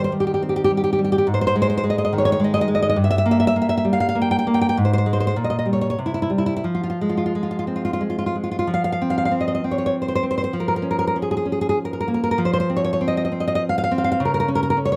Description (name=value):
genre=romantic piece for solo classical guitar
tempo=86-108 BPM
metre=3/4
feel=rubato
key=F minor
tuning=A4 = 440 Hz
part: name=nylon-string guitar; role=solo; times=0.0-15.0 s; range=G2 to G5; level=-21 LUFS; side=equal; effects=none
room=light reverb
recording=close, detailed microphones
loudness=-21 LUFS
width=mono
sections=0.0-8.7 A section; 8.7-15.0 B section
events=none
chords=0.0 Cm/Eb; 1.3 Ab5; 3.0 Gm6; 4.8 N.C.; 5.4 Bbm6; 6.0 C5; 6.6 Fm; 8.7 F5; 10.6 Bbm/F; 12.4 F5; 14.2 Bbm/Db